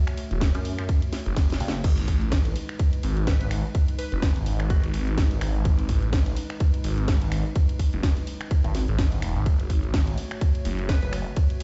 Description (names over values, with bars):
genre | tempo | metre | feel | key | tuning
bass house | 126 BPM | 4/4 | swing 57% on 16ths | G# phrygian | A4 = 440 Hz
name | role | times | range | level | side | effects
dark analog pad | sustained chords | 0.0-11.6 s | G#3 to C#5 | -40 LUFS | equal | chorus, sidechain pumping
garage drum kit | drums | 0.1-11.6 s | crash cymbal, finger snaps, hi-hat, ride cymbal, snare drum | -36 LUFS | equal | none
phased detuned saw bass | bass | 0.3-11.2 s | E1 to A1 | -28 LUFS | equal | phaser, overdrive, sidechain pumping
electronic kick drum | drums | 0.4-11.5 s | none | -24 LUFS | equal | none
pulsing pluck wobble bass | bass | 0.5-1.8, 8.6-8.9 s | F#1 to F#2 | -29 LUFS | equal | chorus, overdrive, sidechain pumping
glassy wavetable pluck | melody | 3.3-5.2, 10.9-11.1 s | F#4 to B4 | -42 LUFS | equal | chorus, tape echo
room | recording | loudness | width
little or no reverb | played on a big sound system in a bare room, large studio reverb, nothing above 7.8 kHz | -24 LUFS | mono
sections
0.0-11.6 A section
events
drum fill 1.4-1.8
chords
0.0 F#m; 1.8 G#m; 9.5 F#m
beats
0.41 0.89 1.37 | 1.84 2.32 2.79 3.27 | 3.75 4.22 4.70 5.18 | 5.65 6.13 6.60 7.08 | 7.56 8.03 8.51 8.98 | 9.46 9.94 10.41 10.89 | 11.37